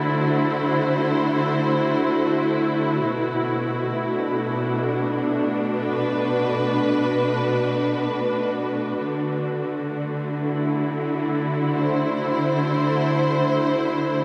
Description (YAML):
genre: ambient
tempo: free time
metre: none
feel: none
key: unclear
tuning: A4 = 440 Hz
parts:
  - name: dark symphonic string section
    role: solo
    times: 0.0-14.2 s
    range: B2 to C5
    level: -23 LUFS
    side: equal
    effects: diffuse ambient delay
room: wet huge ambient reverb, RT60 9.1 s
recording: none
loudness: -23 LUFS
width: mono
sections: 0.0-14.2 A section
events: none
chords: 0.0 D7; 3.1 Bm7; 9.0 D7